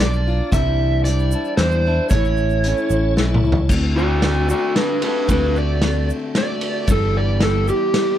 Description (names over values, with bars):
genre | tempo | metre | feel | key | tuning
folk rock and heartland rock | 113 BPM | 3/4 | straight | D mixolydian | A4 = 437 Hz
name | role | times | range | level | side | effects
overdriven slide guitar | melody | 0.0-8.2 s | D4 to E5 | -21 LUFS | right 2 dB | none
picked steel-string acoustic guitar | accompaniment | 0.0-8.2 s | G2 to G4 | -24 LUFS | left 5 dB | none
tonewheel organ | sustained chords | 0.0-8.2 s | B3 to C5 | -31 LUFS | right 1 dB | chorus vibrato, slow rotary speaker
picked electric bass | bass | 0.0-7.7 s | G1 to E2 | -19 LUFS | equal | none
egg shaker | percussion | 0.1-7.8 s | none | -38 LUFS | right 10 dB | none
vintage drum kit | drums | 0.5-8.1 s | crash cymbal, hi-hat, kick drum, ride cymbal, snare drum, toms | -22 LUFS | equal | none
room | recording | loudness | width
little or no reverb | none | -16 LUFS | side -11 dB against mid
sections
0.0-3.7 A section; 3.7-8.2 B section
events
drum fill 3.2-3.7; electric slide guitar solo 3.7-8.2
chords
0.0 Bb; 0.5 Cadd9; 2.1 A; 3.7 D7; 6.9 G6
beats
| 0.52 1.05 1.58 | 2.11 2.64 3.17 | 3.70 4.23 4.76 | 5.30 5.83 6.36 | 6.89 7.42 7.96